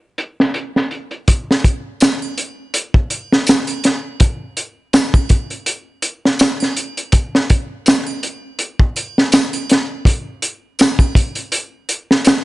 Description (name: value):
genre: trip hop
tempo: 82 BPM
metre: 4/4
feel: swing 56% on 16ths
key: none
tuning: none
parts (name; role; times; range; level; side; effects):
- crunchy breakbeat drum kit; drums; 0.2-12.4 s; hi-hat, kick drum, snare drum; -13 LUFS; equal; low-pass filter on kick, low-pass filter on hats, low-pass filter on snare, low-pass filter on room
- tambourine and triangle; percussion; 2.0-12.4 s; none; -27 LUFS; right 1 dB; none
room: light reverb, studio ambience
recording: nothing above 11.0 kHz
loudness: -14 LUFS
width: side -19 dB against mid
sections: 0.0-1.3 A section; 1.3-12.4 B section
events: none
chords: none